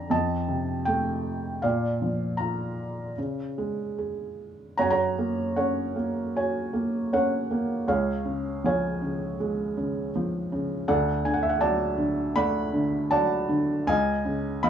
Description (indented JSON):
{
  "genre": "classical, lyrical solo piano",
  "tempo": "79 BPM",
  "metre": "4/4",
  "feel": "rubato",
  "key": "F# major from 4.8 s",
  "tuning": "A4 = 439 Hz",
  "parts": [
    { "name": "felt-muted upright piano", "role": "solo", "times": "0.0-14.7 s", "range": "C#2 to B5", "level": "-24 LUFS", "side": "right 1 dB", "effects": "none" }
  ],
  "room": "light reverb",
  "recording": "worn, warbling old tape, cassette tape, warbly pitch drift",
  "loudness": "-24 LUFS",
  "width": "side -8 dB against mid",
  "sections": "0.0-4.8 A section; 4.8-14.7 B section",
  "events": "none",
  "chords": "0.1 F7; 1.6 Bb; 3.2 Db5; 4.8 F#; 7.9 C#; 10.9 D; 13.9 C#add9",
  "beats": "0.11 0.87 | 1.63 2.40 3.17 3.98 | 4.78 5.57 6.36 7.12 | 7.88 8.63 9.38 10.14 | 10.88 11.61 12.36 13.11 | 13.87 14.63"
}